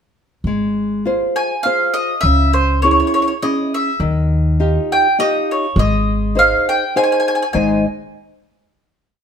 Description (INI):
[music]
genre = italian folk, Italian serenade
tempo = 102 BPM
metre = 3/4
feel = swing 54% on 8ths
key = Ab major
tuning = A4 = 440 Hz
[part]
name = upright bass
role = bass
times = 0.4-7.8 s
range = Ab1 to Eb2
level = -17 LUFS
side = equal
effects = none
[part]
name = nylon-string guitar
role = accompaniment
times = 0.5-7.8 s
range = Ab2 to Eb5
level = -18 LUFS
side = equal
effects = none
[part]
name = mandolin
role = melody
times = 1.4-7.8 s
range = C5 to Ab5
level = -16 LUFS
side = equal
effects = none
[sound]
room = moderate stone room reverb, RT60 1.1 s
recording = band playing live in one room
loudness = -14 LUFS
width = side -7 dB against mid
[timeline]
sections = 0.4-7.5 A section; 7.5-9.2 final chord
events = none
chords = 0.4 Ab6; 2.2 Dbm; 4.0 Ebadd9; 5.8 Ab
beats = | 0.45 1.05 1.64 | 2.23 2.83 3.41 | 4.00 4.59 5.18 | 5.76 6.35 6.95 | 7.54